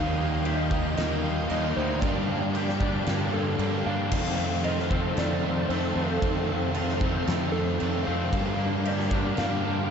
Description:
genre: rock, shoegaze and dream pop.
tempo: 114 BPM.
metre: 4/4.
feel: straight.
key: unclear.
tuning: A4 = 440 Hz.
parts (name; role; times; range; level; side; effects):
soft struck synth lead; melody; 0.0-9.9 s; A4 to F5; -34 LUFS; equal; chorus, analog delay.
ensemble organ-string; sustained chords; 0.0-9.9 s; Bb3 to Eb6; -35 LUFS; equal; phaser, ensemble chorus.
twangy electric guitar; arpeggios; 0.0-9.9 s; Eb3 to G4; -37 LUFS; equal; analog chorus, analog delay.
overdriven electric guitar; riff; 0.0-9.9 s; F2 to Eb4; -31 LUFS; left 9 dB; ensemble chorus.
overdriven semi-hollow guitar; riff; 0.0-9.9 s; F2 to Eb4; -32 LUFS; right 9 dB; reverse reverb.
growling fingered electric bass; bass; 0.0-9.9 s; D2 to G2; -30 LUFS; equal; overdrive.
huge arena drum kit; drums; 0.5-9.5 s; crash cymbal, kick drum, snare drum; -32 LUFS; equal; none.
room: moderate huge ambient reverb, RT60 4.1 s.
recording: dreamy mix soaked in reverb, nothing above 7.9 kHz.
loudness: -24 LUFS.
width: side -7 dB against mid.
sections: 0.0-4.1 A section; 4.1-9.9 A section.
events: none.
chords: 0.0 Ebadd9; 2.0 Gm7; 4.1 F7; 8.3 Gm7.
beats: 0.45 0.98 1.50 | 2.03 2.55 3.08 3.61 | 4.13 4.66 5.18 5.71 | 6.24 6.76 7.29 7.81 | 8.34 8.86 9.39.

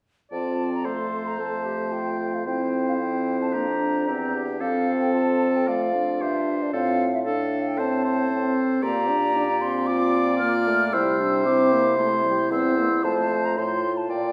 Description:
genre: quick classical-period movement for wind quintet.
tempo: 113 BPM.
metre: 4/4.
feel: rubato.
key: F major.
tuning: A4 = 440 Hz.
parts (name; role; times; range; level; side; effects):
mellow hollow silver concert flute; melody; 0.3-14.3 s; D5 to F6; -30 LUFS; equal; none.
clear oboe; second line; 0.3-14.3 s; G4 to D5; -33 LUFS; equal; none.
clear clarinet; accompaniment; 0.3-14.3 s; C4 to A4; -32 LUFS; equal; none.
warm French horn; accompaniment; 0.3-14.3 s; G3 to D4; -29 LUFS; equal; none.
mellow bassoon; bass; 0.3-14.3 s; E2 to C3; -29 LUFS; equal; none.
room: wet recital hall reverb, RT60 1.6 s.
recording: heard from further back in the room.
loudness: -23 LUFS.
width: mono.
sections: 0.3-14.3 A section.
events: none.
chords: 0.3 F; 2.5 C7/F; 4.6 F; 6.7 F/A; 8.8 Gm/Bb; 10.9 C7; 13.0 F.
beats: | 0.32 0.85 1.39 1.93 | 2.47 3.00 3.54 4.07 | 4.61 5.14 5.68 6.21 | 6.73 7.26 7.78 8.30 | 8.83 9.36 9.88 10.40 | 10.93 11.46 11.98 12.51 | 13.04 13.57 14.10.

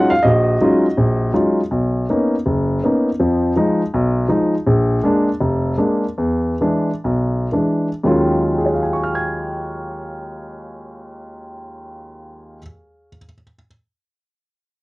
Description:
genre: solo jazz.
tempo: 112-167 BPM.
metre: 4/4.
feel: swing 63% on 8ths, rubato.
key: Eb minor.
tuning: A4 = 440 Hz.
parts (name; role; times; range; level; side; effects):
warm grand piano; solo; 0.0-13.6 s; F1 to Ab6; -16 LUFS; equal; cassette tape.
room: moderate booth ambience, RT60 0.3 s.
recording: home recording on cassette.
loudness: -15 LUFS.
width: side -20 dB against mid.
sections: 0.0-1.7 A section; 1.7-8.0 B section; 8.0-12.2 C section.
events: slowing down 4.7-8.0.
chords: 0.0 Ebm11; 1.7 Bmaj9; 3.2 Fm7b5; 4.7 Bb7; 6.2 E7; 8.0 Ebm11.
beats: | 0.24 0.60 0.96 1.34 | 1.72 2.10 2.47 2.84 | 3.21 3.57 3.93 4.30 | 4.66 5.02 5.39 5.77 | 6.16 6.58 7.03 7.52 | 8.04 8.57 9.10 9.61 | 10.13 10.65 11.17 11.70.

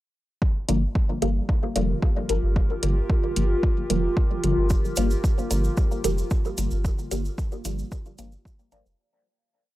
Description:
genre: dub techno.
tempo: 112 BPM.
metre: 4/4.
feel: straight.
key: G minor.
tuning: A4 = 439 Hz.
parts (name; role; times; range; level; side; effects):
warbly tape-like pad; sustained chords; 1.9-8.9 s; F4 to Bb4; -30 LUFS; equal; chorus, built-in reverb, phaser, sidechain pumping.
electronic kick drum; drums; 0.4-8.6 s; none; -23 LUFS; equal; overdrive.
filtered dub chord stab; stabs; 0.7-8.9 s; D3 to Bb3; -28 LUFS; equal; phaser, sidechain pumping, dub echo.
soft dub sub bass; bass; 0.7-8.9 s; F1 to G1; -25 LUFS; equal; sidechain pumping.
electronic hi-hat; drums; 0.7-8.8 s; none; -31 LUFS; equal; overdrive.
cabasa; percussion; 4.7-9.0 s; none; -38 LUFS; right 3 dB; none.
room: little or no reverb.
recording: dry, gritty hardware recording.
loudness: -22 LUFS.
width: side -16 dB against mid.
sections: 0.4-9.0 groove.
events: fade-out 6.1-9.0.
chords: 0.4 Gm7.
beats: | 0.42 0.95 1.49 2.02 | 2.56 3.10 3.63 4.17 | 4.70 5.24 5.78 6.31 | 6.85 7.38 7.92 8.45.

